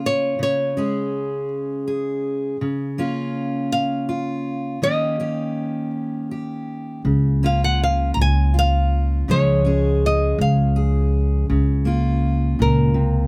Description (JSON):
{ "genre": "acoustic folk-pop ballad", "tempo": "54 BPM (dotted quarters)", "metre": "6/8", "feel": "straight", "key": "unclear", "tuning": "A4 = 440 Hz", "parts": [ { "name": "fingerpicked steel-string acoustic guitar", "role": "accompaniment", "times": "0.0-13.3 s", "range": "Bb2 to Ab4", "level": "-26 LUFS", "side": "equal", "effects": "none" }, { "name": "flamenco guitar", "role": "melody", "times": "0.1-13.3 s", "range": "Bb4 to Bb5", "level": "-25 LUFS", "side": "equal", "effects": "none" }, { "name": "upright bass", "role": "bass", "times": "7.0-13.3 s", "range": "Db2", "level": "-20 LUFS", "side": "equal", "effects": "none" } ], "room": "little or no reverb", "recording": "close, detailed microphones", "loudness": "-21 LUFS", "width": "mono", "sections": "0.0-13.3 A section", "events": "none", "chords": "0.4 Db5; 2.6 Db6; 4.8 Eb7; 7.1 Db6; 9.3 Db; 11.5 Db6" }